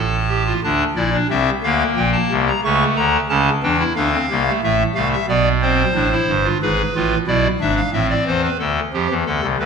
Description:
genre	classical, baroque-style 3-part fugue for pipe organ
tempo	90 BPM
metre	3/4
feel	straight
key	D minor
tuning	A4 = 441 Hz
part	pipe organ, clarinet reed	solo	0.0-9.7 s	G1 to C#6	-15 LUFS	equal	none
room	wet recital hall reverb, RT60 1.5 s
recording	none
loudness	-15 LUFS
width	side -6 dB against mid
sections	0.6-8.6 A section; 8.6-9.7 B section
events	none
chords	0.0 Fadd9/A; 0.6 Dm; 2.0 Gm/Bb; 2.6 A7/C#; 3.9 Dm; 4.6 Am; 5.9 Dm/A; 6.6 E7/G#; 7.9 Am; 8.6 G7(no3)/D

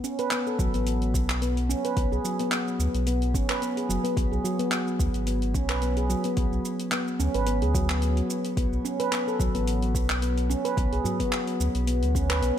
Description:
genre	organic downtempo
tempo	109 BPM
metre	4/4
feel	swing 55% on 16ths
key	B dorian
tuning	A4 = 440 Hz
part	handpan	arpeggios	0.0-12.6 s	F#3 to B4	-27 LUFS	equal	digital delay, shimmer reverb
part	deep house drum kit	drums	0.0-12.5 s	handclaps, hi-hat, shaker	-32 LUFS	right 1 dB	overdrive
part	warm sub bass	bass	0.6-12.5 s	F#1 to D2	-26 LUFS	equal	sidechain pumping
part	electronic kick drum	drums	0.6-12.3 s	none	-28 LUFS	equal	overdrive
part	udu	percussion	11.0-11.2 s	none	-34 LUFS	right 1 dB	none
room	light reverb, digital ambience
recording	none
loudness	-24 LUFS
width	side -10 dB against mid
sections	0.0-12.6 A section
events	none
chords	0.0 A; 2.0 F#sus4; 4.2 Bm6; 8.6 A; 10.8 Bm

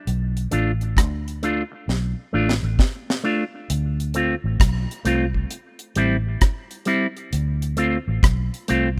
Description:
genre	roots reggae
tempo	66 BPM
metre	4/4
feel	swing 64% on 16ths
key	unclear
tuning	A4 = 439 Hz
part	vintage muted fingered electric bass	bass	0.1-9.0 s	A1 to D2	-26 LUFS	equal	none
part	deep reggae drum kit	drums	0.1-9.0 s	hi-hat, kick drum, rim click, snare drum	-22 LUFS	equal	none
part	electric guitar with an envelope filter	accompaniment	0.5-8.9 s	G3 to F4	-26 LUFS	equal	none
room	studio ambience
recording	rough home demo mix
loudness	-22 LUFS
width	mono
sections	0.0-3.7 A section; 3.7-9.0 B section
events	drum fill 1.9-3.7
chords	0.1 Bm7b5; 3.7 Dm7; 5.5 Am7; 7.3 Dm7

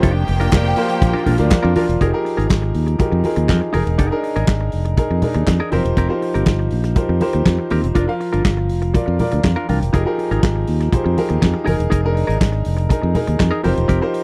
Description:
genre	disco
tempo	121 BPM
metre	4/4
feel	straight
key	F dorian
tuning	A4 = 440 Hz
part	rich studio string section	second line	0.0-1.7 s	G4 to G5	-27 LUFS	equal	none
part	clear concert grand piano	accompaniment	0.0-14.2 s	F3 to G5	-23 LUFS	equal	none
part	semi-hollow electric guitar	accompaniment	0.0-14.2 s	C4 to Bb4	-27 LUFS	equal	none
part	clear studio string section	sustained chords	0.0-2.0 s	Eb3 to Bb3	-30 LUFS	equal	none
part	fingered electric bass	bass	0.0-14.0 s	E1 to F2	-21 LUFS	equal	none
part	warm soul drum kit	drums	0.0-14.2 s	handclaps, hi-hat, kick drum, snare drum	-19 LUFS	equal	none
part	congas	percussion	0.0-14.0 s	none	-27 LUFS	equal	none
part	group handclap	percussion	0.5-1.6 s	none	-36 LUFS	equal	none
room	little or no reverb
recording	dry, close 1970s-style studio recording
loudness	-18 LUFS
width	mono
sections	0.0-2.0 A section; 2.0-14.2 B section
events	none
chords	0.0 Gm7/F; 2.0 Fm11; 3.7 Bb7sus4; 5.7 Eb69; 8.0 Gm7/F; 9.9 Fm11; 11.7 Bb7sus4; 13.6 Eb69

